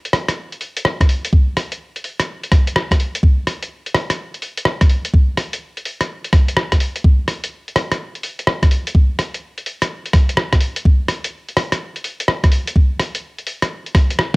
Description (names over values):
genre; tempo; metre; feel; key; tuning
future garage; 126 BPM; 4/4; swing 65% on 16ths; none; none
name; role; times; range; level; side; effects
lo-fi sampler-style drum kit; drums; 0.1-14.3 s; hi-hat, rim click; -19 LUFS; equal; studio reverb, cassette tape
electronic kick drum; drums; 1.0-14.1 s; none; -12 LUFS; equal; overdrive, studio reverb, cassette tape
room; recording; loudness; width
light reverb; home recording on cassette; -15 LUFS; side -25 dB against mid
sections
0.0-14.4 A section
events
none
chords
none